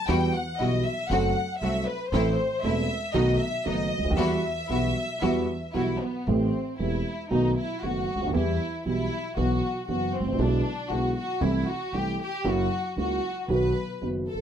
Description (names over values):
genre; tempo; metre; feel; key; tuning
tango; 117 BPM; 4/4; rubato; E harmonic minor; A4 = 440 Hz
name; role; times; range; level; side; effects
warm studio violin section; second line; 0.0-14.4 s; B3 to G5; -30 LUFS; left 2 dB; none
dark upright piano; accompaniment; 0.1-14.4 s; E1 to A4; -27 LUFS; right 2 dB; none
clear studio string section; stabs; 0.1-6.0 s; G3 to F#4; -34 LUFS; left 2 dB; none
upright bass; bass; 0.1-14.4 s; E1 to E2; -30 LUFS; equal; none
room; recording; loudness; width
moderate small room reverb, RT60 0.5 s; none; -24 LUFS; side -9 dB against mid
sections
0.0-6.3 A section; 6.3-14.4 A section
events
violin section solo 0.0-6.3, 6.3-14.4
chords
0.1 Emadd9; 1.1 F#dim; 2.1 Am; 3.1 B7; 4.2 Emadd9; 6.3 Am7; 7.3 B7; 8.3 Em; 9.4 Bsus4; 10.4 E7/B; 11.4 Am/C; 12.4 F#7; 13.5 B